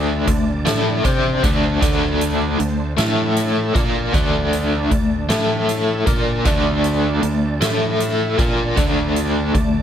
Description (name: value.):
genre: psychedelic rock.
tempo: 52 BPM (dotted quarters).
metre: 6/8.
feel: straight.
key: unclear.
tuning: A4 = 440 Hz.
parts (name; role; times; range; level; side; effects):
tonewheel organ; sustained chords; 0.0-9.8 s; D4 to A5; -29 LUFS; right 5 dB; slow rotary speaker, overdrive, chorus vibrato.
biting overdriven guitar; riff; 0.0-9.8 s; D3 to C5; -18 LUFS; left 1 dB; tremolo.
fuzz fingered electric bass; bass; 0.0-9.8 s; D2 to C3; -24 LUFS; equal; overdrive.
soft-mallet drum kit; drums; 0.3-9.7 s; hi-hat, kick drum, snare drum; -22 LUFS; equal; none.
room: light reverb.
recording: none.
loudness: -16 LUFS.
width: side -9 dB against mid.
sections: 0.0-9.8 A section.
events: none.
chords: 0.0 D5; 3.0 A5; 3.7 D5; 5.3 A5; 6.1 D5; 7.6 A5; 8.4 D5.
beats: 0.66 | 1.81 2.97 | 4.13 5.29 | 6.45 7.61 | 8.77.